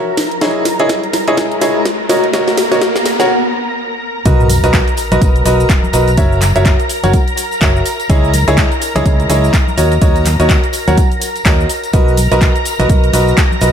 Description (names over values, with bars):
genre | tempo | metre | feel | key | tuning
piano house | 125 BPM | 4/4 | swing 59% on 16ths | B major | A4 = 440 Hz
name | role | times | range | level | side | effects
analog string pad | sustained chords | 0.0-13.7 s | A#4 to A#5 | -21 LUFS | equal | ensemble chorus, sidechain pumping
clear concert grand piano | riff | 0.0-13.7 s | E4 to F#5 | -15 LUFS | equal | sidechain pumping, ping-pong delay
riser and sub drop | sound effects | 0.0-6.2 s | none | -21 LUFS | equal | none
house drum kit | drums | 0.2-13.7 s | handclaps, hi-hat, shaker, snare drum | -18 LUFS | equal | overdrive
electronic kick drum | drums | 0.4-13.5 s | none | -13 LUFS | equal | high-pass filter on kick, high-pass filter on room
fingered electric bass | bass | 4.3-13.7 s | F#1 to D#2 | -15 LUFS | equal | sidechain pumping
tambourine and congas | percussion | 4.3-13.7 s | none | -24 LUFS | left 1 dB | none
room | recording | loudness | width
light reverb, digital ambience | faint mains hum | -10 LUFS | side -8 dB against mid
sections
0.0-4.3 A section; 4.3-13.7 B section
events
build-up 0.0-4.3; drum fill 0.0-3.3; riser 0.0-3.3; filter sweep on analog synth pad 0.0-4.3; break 3.3-4.3; drop 4.3-13.7; impact 4.3-6.2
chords
0.4 C#madd9; 2.1 D#m7; 4.3 Bmaj7; 6.2 F#7; 8.1 C#madd9; 9.8 D#m7; 11.9 Bmaj7